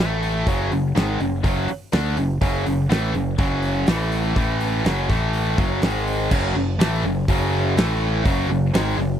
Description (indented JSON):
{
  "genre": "classic rock",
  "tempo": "123 BPM",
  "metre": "4/4",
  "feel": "straight",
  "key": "F# minor",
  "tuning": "A4 = 440 Hz",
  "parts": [
    { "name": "tight distorted guitar", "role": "riff", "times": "0.0-9.2 s", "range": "F#2 to D4", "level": "-22 LUFS", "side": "equal", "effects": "distortion" },
    { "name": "growling picked electric bass", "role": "bass", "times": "0.0-9.2 s", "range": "F#1 to D2", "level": "-24 LUFS", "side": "equal", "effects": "overdrive" },
    { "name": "huge arena drum kit", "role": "drums", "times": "0.2-9.1 s", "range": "crash cymbal, hi-hat, kick drum, snare drum", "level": "-23 LUFS", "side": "equal", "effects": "none" }
  ],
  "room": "little or no reverb",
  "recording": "dry, close 1970s-style studio recording",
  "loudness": "-18 LUFS",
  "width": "side -10 dB against mid",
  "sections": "0.0-6.3 A section; 6.3-9.2 B section",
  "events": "none",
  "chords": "0.0 A5; 0.5 F#m; 3.9 A5; 4.8 F#5; 5.1 A5; 5.6 F#5; 5.8 G#5; 6.3 F#m; 7.8 A5; 8.3 F#5"
}